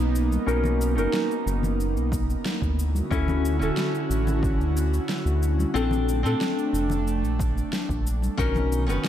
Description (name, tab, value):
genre	sunset chillout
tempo	91 BPM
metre	4/4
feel	straight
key	unclear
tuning	A4 = 440 Hz
part	nylon-string guitar	accompaniment	0.0-9.1 s	D#3 to B4	-28 LUFS	moving between left 6 dB and right 4 dB	auto-pan, low-pass filter, tape echo, shimmer reverb
part	airy breathy pad	sustained chords	0.0-9.1 s	D3 to F#4	-28 LUFS	right 1 dB	chorus, shimmer reverb
part	round analog bass	bass	0.0-9.0 s	D1 to A#2	-24 LUFS	equal	none
part	electronic cabasa and snare drum	drums	0.2-9.1 s	none	-34 LUFS	equal	overdrive
part	congas	percussion	0.3-8.7 s	none	-35 LUFS	left 2 dB	none
part	electronic kick drum	drums	2.1-8.5 s	none	-29 LUFS	equal	overdrive
room	moderate plate reverb, RT60 2.2 s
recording	dreamy mix soaked in reverb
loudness	-22 LUFS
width	side -11 dB against mid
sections	0.0-9.1 A section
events	filter sweep on nylon-string guitar 0.0-9.1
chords	0.0 Bmaj9; 2.8 Dmaj9; 5.7 A#maj9; 8.4 Bmaj9